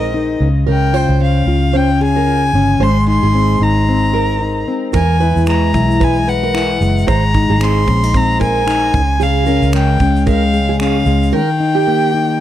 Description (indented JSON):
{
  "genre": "acoustic pop",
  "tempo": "113 BPM",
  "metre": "4/4",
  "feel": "swing 60% on 16ths",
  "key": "Ab major",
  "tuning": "A4 = 440 Hz",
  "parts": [
    { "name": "rich violin", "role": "melody", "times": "0.0-12.4 s", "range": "Eb5 to C6", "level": "-18 LUFS", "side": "left 1 dB", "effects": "tape echo" },
    { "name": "fingerpicked plugged-in steel-string acoustic guitar", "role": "accompaniment", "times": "0.0-12.4 s", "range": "Db3 to B4", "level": "-16 LUFS", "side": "left 3 dB", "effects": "none" },
    { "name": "fingerpicked steel-string acoustic guitar", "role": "arpeggios", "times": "0.0-12.1 s", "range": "G4 to C5", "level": "-21 LUFS", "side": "right 16 dB", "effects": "none" },
    { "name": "vintage muted fingered electric bass", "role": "bass", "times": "0.0-11.3 s", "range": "F#1 to E2", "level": "-16 LUFS", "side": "right 1 dB", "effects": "none" },
    { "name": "modern studio drum kit", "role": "drums", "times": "4.9-11.3 s", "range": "finger snaps, kick drum, shaker", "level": "-21 LUFS", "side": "right 1 dB", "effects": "none" }
  ],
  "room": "little or no reverb",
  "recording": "dry, close 1970s-style studio recording",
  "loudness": "-11 LUFS",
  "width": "side -12 dB against mid",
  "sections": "0.0-12.4 A section",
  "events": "none",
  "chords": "0.4 Db; 2.8 Abadd9; 4.9 Eadd9; 7.1 Abadd9; 8.9 Db; 11.3 Eb"
}